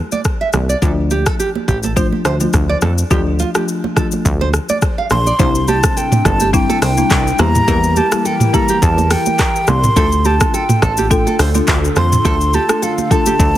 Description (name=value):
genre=afrobeats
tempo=105 BPM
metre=4/4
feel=swing 55% on 16ths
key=D minor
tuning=A4 = 440 Hz
part: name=nylon-string guitar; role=riff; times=0.1-13.3 s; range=F4 to F5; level=-22 LUFS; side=right 4 dB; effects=digital delay
part: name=afro-pop drum kit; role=drums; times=0.1-13.5 s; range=handclaps, hi-hat, kick drum, rim click, shaker, toms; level=-17 LUFS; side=equal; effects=none
part: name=congas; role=percussion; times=0.1-13.6 s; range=none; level=-24 LUFS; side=right 7 dB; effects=none
part: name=plucky analog bass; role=bass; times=0.5-13.6 s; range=G1 to F2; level=-16 LUFS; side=equal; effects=none
part: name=folk marimba with medium mallets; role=accompaniment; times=0.8-13.3 s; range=F3 to A4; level=-21 LUFS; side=left 4 dB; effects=none
part: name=mellow hollow jazz flute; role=melody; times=5.1-13.6 s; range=F5 to C6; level=-18 LUFS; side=right 1 dB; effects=digital delay
part: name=hollow soft pad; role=sustained chords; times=5.4-13.6 s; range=C3 to Bb4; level=-24 LUFS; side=left 1 dB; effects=chorus
room=little or no reverb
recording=heavily compressed radio sound, multiband compression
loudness=-12 LUFS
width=side -13 dB against mid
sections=0.0-5.4 A section; 5.4-13.6 B section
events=none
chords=0.0 N.C.; 0.8 Dm; 5.4 Cadd9; 7.4 Edim; 10.0 Dm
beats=0.25 | 0.82 1.39 1.96 2.54 | 3.11 3.68 4.25 4.82 | 5.39 5.96 6.54 7.11 | 7.68 8.25 8.82 9.39 | 9.96 10.54 11.11 11.68 | 12.25 12.82 13.39